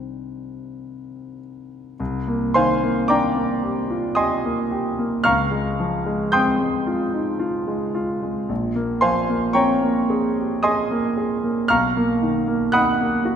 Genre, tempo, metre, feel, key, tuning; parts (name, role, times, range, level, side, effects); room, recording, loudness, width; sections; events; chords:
classical, impressionist solo piano; 56 BPM; 3/4; uneven beats, rubato; C minor; A4 = 440 Hz
clear grand piano; solo; 0.0-13.4 s; Bb1 to G6; -19 LUFS; equal
moderate concert hall reverb, RT60 2.3 s; minimal, uncompressed stereo recording; -18 LUFS; side -8 dB against mid
0.0-2.0 A section; 2.0-13.4 A section
0.0 Cmadd9; 2.0 Cm9; 5.3 Dbmaj7; 8.5 Bbm9; 11.7 Bmaj7